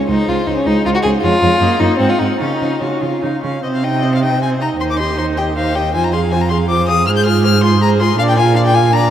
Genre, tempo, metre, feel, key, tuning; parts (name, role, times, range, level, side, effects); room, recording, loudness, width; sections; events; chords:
quick classical-period movement for string quartet; 158 BPM; 3/4; rubato; Db major, C minor from 3.6 s; A4 = 440 Hz
rich violin; melody; 0.0-9.1 s; C5 to G6; -19 LUFS; left 5 dB
rich violin; second line; 0.0-9.1 s; C4 to F5; -18 LUFS; left 2 dB
clear viola; accompaniment; 0.0-9.1 s; Ab3 to Ab4; -20 LUFS; right 2 dB
rich cello; bass; 0.1-9.1 s; Db2 to Db3; -17 LUFS; right 3 dB
wet cathedral reverb, RT60 5.4 s; in a vast, echoing space; -12 LUFS; side -10 dB against mid
0.0-3.6 A section; 3.6-9.1 B section
0.1 Ab/Db; 1.2 Db; 1.6 Ebm; 2.0 Ab7; 2.4 Db; 3.6 Cm; 4.8 Cm/Eb; 5.9 Fm; 7.1 Fm/Ab; 8.2 Bb